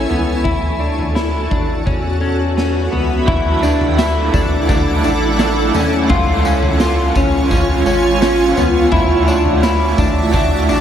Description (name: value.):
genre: dream pop.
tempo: 85 BPM.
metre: 4/4.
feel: straight.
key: unclear.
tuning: A4 = 439 Hz.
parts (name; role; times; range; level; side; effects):
shimmering ambient pad; sustained chords; 0.0-10.8 s; E4 to D6; -19 LUFS; right 1 dB; chorus, built-in reverb.
clean electric guitar; arpeggios; 0.0-10.8 s; B3 to E#4; -19 LUFS; left 4 dB; analog chorus, analog delay.
round analog bass; bass; 0.0-10.8 s; G#1 to E2; -19 LUFS; equal; none.
raw garage drum kit; drums; 0.1-10.8 s; kick drum, snare drum, tambourine, toms; -19 LUFS; equal; none.
raw garage guitar; accompaniment; 3.3-10.8 s; C#3 to F#4; -20 LUFS; right 5 dB; overdrive, tremolo, ensemble chorus.
room: wet plate reverb, RT60 3.5 s.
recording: dreamy mix soaked in reverb.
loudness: -13 LUFS.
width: side -9 dB against mid.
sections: 0.0-3.3 A section; 3.3-10.8 B section.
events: none.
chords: 0.5 D; 1.9 Esus2; 3.3 Dadd9; 6.1 C#; 8.9 Dadd9.